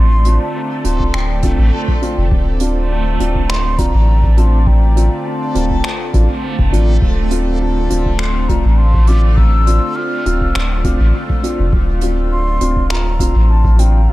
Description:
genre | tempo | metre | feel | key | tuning
ambient dub | 102 BPM | 4/4 | swing 53% on 16ths | D minor | A4 = 441 Hz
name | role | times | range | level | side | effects
breathy mellow concert flute | melody | 0.0-14.1 s | F5 to F6 | -24 LUFS | left 1 dB | dub echo
warm analog pad | sustained chords | 0.0-14.1 s | D3 to D5 | -25 LUFS | left 1 dB | chorus
soft dub sub bass | bass | 0.0-14.1 s | D1 to A1 | -13 LUFS | equal | tube saturation
backwards swelling texture | texture | 0.0-14.1 s | A3 | -26 LUFS | equal | built-in reverb
jazz brush drum kit | drums | 0.2-13.9 s | finger snaps, hi-hat | -26 LUFS | right 1 dB | dub echo
dark upright piano | stabs | 0.3-14.0 s | C4 to F4 | -23 LUFS | right 1 dB | dub echo
electronic kick drum | drums | 1.0-13.8 s | none | -18 LUFS | equal | none
room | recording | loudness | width
small room ambience | echo-heavy mix | -12 LUFS | side -17 dB against mid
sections
0.0-14.1 A section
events
none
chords
0.0 Dm7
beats
0.55 1.14 1.73 | 2.31 2.90 3.49 4.08 | 4.67 5.26 5.84 6.43 | 7.02 7.61 8.20 8.79 | 9.37 9.96 10.55 11.14 | 11.73 12.31 12.90 13.49 | 14.08

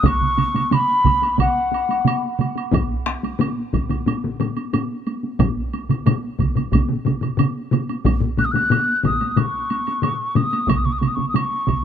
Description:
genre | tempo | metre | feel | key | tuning
japanese traditional, taiko drum ensemble | 90 BPM | 4/4 | straight | unclear | A4 = 439 Hz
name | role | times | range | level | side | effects
mellow hollow wooden piccolo | melody | 0.0-2.4, 8.4-11.8 s | F#5 to F#6 | -20 LUFS | left 1 dB | none
taiko ensemble | percussion | 0.0-11.8 s | none | -24 LUFS | equal | none
taiko ensemble | percussion | 0.0-11.8 s | none | -22 LUFS | right 5 dB | none
taiko ensemble | percussion | 0.0-11.8 s | none | -22 LUFS | right 1 dB | none
woodblock | percussion | 0.1-11.8 s | none | -32 LUFS | right 10 dB | none
taiko ensemble | percussion | 2.7-10.5 s | none | -22 LUFS | left 6 dB | none
room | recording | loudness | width
light reverb | none | -18 LUFS | side -9 dB against mid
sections
0.0-11.8 A section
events
none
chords
none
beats
| 0.05 0.72 1.39 2.06 | 2.73 3.40 4.06 4.73 | 5.40 6.06 6.72 7.39 | 8.05 8.71 9.37 10.03 | 10.69 11.35

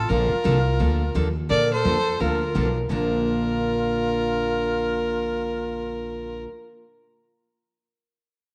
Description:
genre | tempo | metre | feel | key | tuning
country, western swing | 172 BPM | 4/4 | swing 64% on 8ths | Bb major | A4 = 440 Hz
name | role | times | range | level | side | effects
clear fiddle | melody | 0.0-6.4 s | A4 to D5 | -28 LUFS | equal | none
bright alto flute | second line | 0.0-6.4 s | F4 to Bb4 | -31 LUFS | equal | none
upright bass | bass | 0.0-6.4 s | Bb1 to Bb2 | -29 LUFS | equal | none
picked steel-string acoustic guitar | accompaniment | 0.1-6.5 s | Bb2 to A4 | -29 LUFS | equal | none
room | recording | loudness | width
moderate echo chamber reverb, RT60 1.7 s, studio ambience | none | -23 LUFS | mono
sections
0.0-1.5 A section; 1.5-2.9 B section; 2.9-5.7 C section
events
none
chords
0.1 Bbmaj7; 2.9 Bb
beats
| 0.11 0.46 0.81 1.16 | 1.50 1.85 2.21 2.55 | 2.90 3.25 3.60 3.95 | 4.30 4.65 5.00 5.35

